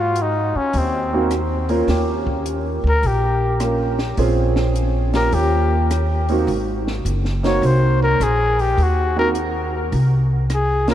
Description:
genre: jazz, small-group swing and bop.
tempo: 104 BPM.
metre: 4/4.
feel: swing 67% on 8ths.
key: unclear.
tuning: A4 = 440 Hz.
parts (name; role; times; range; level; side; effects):
breathy trumpet; melody; 0.0-10.9 s; C4 to Db5; -22 LUFS; left 2 dB; analog delay.
upright bass; bass; 0.0-10.9 s; Gb1 to Ab2; -20 LUFS; equal; none.
compact cocktail drum kit; drums; 0.2-10.9 s; hi-hat, kick drum, rim click, snare drum; -30 LUFS; left 1 dB; none.
warm grand piano; accompaniment; 1.1-10.9 s; Bb3 to Bb4; -22 LUFS; right 3 dB; wide subtle chorus.
room: moderate huge ambient reverb, RT60 3.8 s.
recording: dreamy mix soaked in reverb.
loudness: -16 LUFS.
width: side -11 dB against mid.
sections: 0.0-10.9 A section.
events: none.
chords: 0.0 Abadd9; 1.9 Eb9; 4.2 Bbm7; 5.3 Eb9; 6.5 Ab9 (rootless).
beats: 0.16 0.73 1.31 | 1.88 2.46 3.03 3.61 | 4.18 4.76 5.33 5.91 | 6.48 7.06 7.63 8.21 | 8.78 9.35 9.93 10.50.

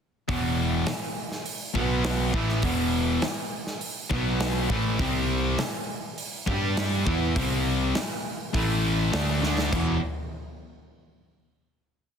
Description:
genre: hard rock.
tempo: 102 BPM.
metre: 4/4.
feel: straight.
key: E minor.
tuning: A4 = 440 Hz.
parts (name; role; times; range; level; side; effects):
high-gain distorted guitar; riff; 0.3-10.0 s; E2 to G4; -31 LUFS; equal; distortion.
overdriven semi-hollow guitar; riff; 0.3-10.0 s; E2 to G4; -30 LUFS; right 10 dB; none.
sludgy distorted guitar; riff; 0.3-10.0 s; E2 to G4; -29 LUFS; left 11 dB; overdrive.
hollow-body short-scale picked electric bass; bass; 0.3-10.0 s; E1 to G2; -29 LUFS; equal; none.
big rock drum kit; drums; 0.3-9.9 s; hi-hat, kick drum, snare drum, splash cymbal, toms; -30 LUFS; equal; none.
room: light reverb, studio reverb.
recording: dense, heavily limited modern master.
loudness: -24 LUFS.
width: side -7 dB against mid.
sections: 0.3-9.7 riff; 9.7-12.1 final chord.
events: drum fill 9.4.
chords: 0.3 E5; 1.8 B5; 2.3 E5; 4.1 B5; 4.7 A5; 5.0 C5; 6.5 G5; 7.1 C5; 8.5 A5; 9.1 D5; 9.7 E5.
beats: | 0.29 0.88 1.46 2.05 | 2.64 3.23 3.82 4.41 | 5.00 5.59 6.18 6.77 | 7.36 7.95 8.54 9.13 | 9.72.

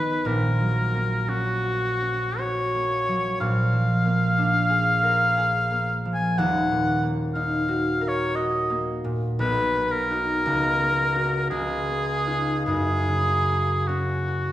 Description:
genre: classical, romantic duo for oboe and harp.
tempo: 49-63 BPM.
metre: 3/4.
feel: rubato.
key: F# major.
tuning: A4 = 440 Hz.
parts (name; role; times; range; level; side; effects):
clear oboe; melody; 0.0-14.5 s; F#4 to G#5; -24 LUFS; left 1 dB; none.
concert harp; accompaniment; 0.0-14.5 s; D#1 to A#4; -24 LUFS; equal; none.
room: wet recital hall reverb, RT60 1.5 s.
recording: heard from further back in the room.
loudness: -21 LUFS.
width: side -14 dB against mid.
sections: 0.0-14.5 A section.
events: none.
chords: 0.3 F#/A#; 3.4 A#7; 6.4 D#m; 9.4 Bmaj7; 10.5 F#/C#; 11.5 C#69; 12.7 F#.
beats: | 0.26 1.29 2.40 | 3.41 4.38 5.38 | 6.39 7.36 8.36 | 9.40 10.45 11.52 | 12.68 13.89.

